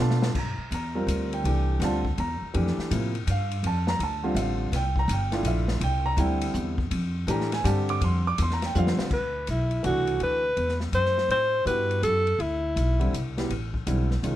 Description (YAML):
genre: modal jazz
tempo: 164 BPM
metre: 3/4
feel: swing 65% on 8ths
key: C mixolydian, D mixolydian from 9.1 s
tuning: A4 = 440 Hz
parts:
  - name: warm grand piano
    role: accompaniment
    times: 0.0-14.4 s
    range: C3 to D6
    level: -28 LUFS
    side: right 1 dB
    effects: none
  - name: upright bass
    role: bass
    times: 0.0-14.4 s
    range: G1 to B2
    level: -26 LUFS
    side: equal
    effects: none
  - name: open jazz drum kit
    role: drums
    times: 0.1-14.3 s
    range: crash cymbal, hi-hat, kick drum, ride cymbal, snare drum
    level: -34 LUFS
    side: left 2 dB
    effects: none
  - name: warm alto saxophone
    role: melody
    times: 9.1-13.4 s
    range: E4 to C5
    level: -25 LUFS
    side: left 1 dB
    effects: none
room: light reverb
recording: none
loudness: -23 LUFS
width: side -13 dB against mid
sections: 0.3-9.1 A section; 9.1-14.4 B section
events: drum fill 0.0-0.3, 8.7-9.1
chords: 0.3 C9; 2.5 Dm; 4.7 C9; 6.9 Dm; 9.1 D13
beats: | 0.35 0.71 1.08 | 1.44 1.81 2.17 | 2.54 2.90 3.27 | 3.63 4.00 4.36 | 4.73 5.09 5.46 | 5.82 6.19 6.55 | 6.92 7.28 7.65 | 8.01 8.38 8.74 | 9.11 9.47 9.84 | 10.21 10.57 10.94 | 11.30 11.67 12.04 | 12.40 12.77 13.14 | 13.50 13.87 14.24